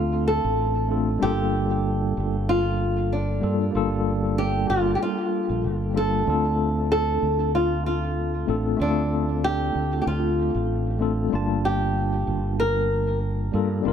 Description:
sunset chillout; 95 BPM; 4/4; swing 53% on 16ths; G minor; A4 = 438 Hz
flamenco guitar; melody; 0.0-13.2 s; D4 to Bb4; -26 LUFS; equal; tape echo
bright tine electric piano; accompaniment; 0.0-13.9 s; G3 to A5; -26 LUFS; moving between left 5 dB and right 4 dB; medium stereo tremolo, auto-pan
fretless electric bass; bass; 0.0-13.9 s; F1 to G2; -26 LUFS; right 1 dB; wide subtle chorus
light reverb, small room ambience; -21 LUFS; side -8 dB against mid
0.0-13.9 A section
0.0 Dm7; 1.2 Gm7; 6.3 Dm7; 11.3 Gm7

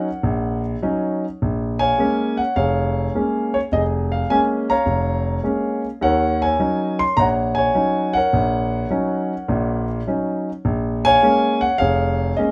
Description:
solo jazz; 104 BPM; 4/4; swing 68% on 8ths; Bb minor; A4 = 440 Hz
warm grand piano; solo; 0.0-12.5 s; F1 to C6; -20 LUFS; equal
light reverb; -20 LUFS; mono
0.0-12.5 A section
0.0 Ebm7; 1.4 Bbm7; 6.0 Ebm7; 10.6 Bbm7

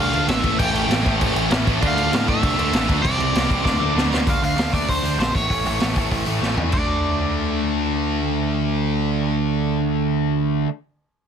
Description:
punk rock; 195 BPM; 4/4; straight; D minor; A4 = 440 Hz
overdriven semi-hollow guitar; melody; 0.0-10.7 s; C5 to G5; -25 LUFS; equal
distorted electric guitar; riff; 0.0-4.3 s; A2 to F4; -26 LUFS; right 1 dB; distortion
sludgy distorted guitar; riff; 0.0-10.7 s; A2 to D4; -25 LUFS; right 16 dB; overdrive
tight distorted guitar; riff; 0.0-10.7 s; A2 to D4; -25 LUFS; left 15 dB; distortion
growling picked electric bass; bass; 0.0-10.7 s; A1 to A2; -25 LUFS; equal; overdrive
raw garage drum kit; drums; 0.1-6.8 s; crash cymbal, hi-hat, kick drum, snare drum, toms; -22 LUFS; equal
little or no reverb; dense, heavily limited modern master; -18 LUFS; side -8 dB against mid
0.0-4.3 A section; 4.3-6.7 B section; 6.7-9.2 C section
drum fill 3.7-4.3, 6.4-6.7
0.4 A; 1.8 Dm; 3.0 C; 3.7 Dm; 5.3 A; 6.7 D5

